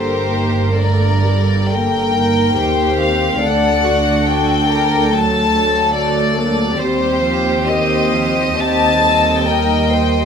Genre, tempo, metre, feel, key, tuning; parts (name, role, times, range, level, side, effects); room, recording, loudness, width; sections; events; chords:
classical, slow romantic movement for string orchestra; 61-72 BPM; 4/4; rubato; G minor; A4 = 439 Hz
clear studio violin section; melody; 0.0-10.2 s; C5 to A5; -18 LUFS; left 4 dB
warm studio violin section; second line; 0.0-10.2 s; F#4 to Eb5; -19 LUFS; left 2 dB
dark studio viola section; accompaniment; 0.0-10.2 s; D3 to D4; -20 LUFS; right 2 dB
warm studio cello section; bass; 0.0-10.2 s; D2 to G2; -21 LUFS; right 2 dB
warm studio double bass section; bass; 0.0-10.2 s; G1 to Eb2; -23 LUFS; right 4 dB
moderate recital hall reverb, RT60 1.4 s; -13 LUFS; side -7 dB against mid
0.0-10.2 A section
0.0 Gm; 3.4 D; 6.8 Cm/Eb; 8.6 Eb